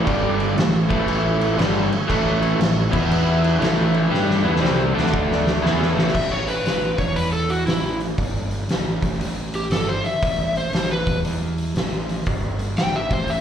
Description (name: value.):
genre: blues rock power trio and southern rock.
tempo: 118 BPM.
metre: 4/4.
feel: swing 65% on 8ths.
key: A mixolydian.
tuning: A4 = 440 Hz.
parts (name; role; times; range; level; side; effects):
overdriven tonewheel organ; sustained chords; 0.0-6.1 s; G3 to E5; -29 LUFS; right 3 dB; slow rotary speaker, chorus vibrato, plate reverb.
overdriven semi-hollow guitar; riff; 0.0-6.1 s; G2 to G4; -20 LUFS; equal; slapback echo.
fuzz fingered electric bass; bass; 0.0-13.4 s; G1 to G2; -25 LUFS; equal; overdrive.
oversized low-tuned drum kit; drums; 0.1-13.4 s; crash cymbal, hi-hat, kick drum, snare drum; -23 LUFS; equal; none.
overdriven slide guitar; melody; 6.2-13.4 s; E4 to G5; -24 LUFS; left 1 dB; plate reverb, slapback echo.
room: moderate club reverb, RT60 0.7 s.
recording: live gig heard through the venue's PA, club reverb.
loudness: -18 LUFS.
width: side -8 dB against mid.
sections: 0.0-6.1 A section; 6.1-13.4 B section.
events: drum fill 4.1-6.1; electric slide guitar solo 6.1-13.4.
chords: 0.1 G5; 0.6 A; 2.8 E5; 3.6 A; 4.9 D5; 5.6 A; 6.1 Aadd9; 6.9 Esus24; 7.7 A5; 8.2 N.C.; 8.7 A5; 11.0 E5; 11.8 N.C.; 12.8 Gsus24.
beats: | 0.06 0.57 1.07 1.58 | 2.08 2.59 3.10 3.60 | 4.11 4.62 5.12 5.63 | 6.14 6.65 7.16 7.67 | 8.18 8.69 9.20 9.71 | 10.22 10.73 11.24 11.75 | 12.26 12.77 13.28.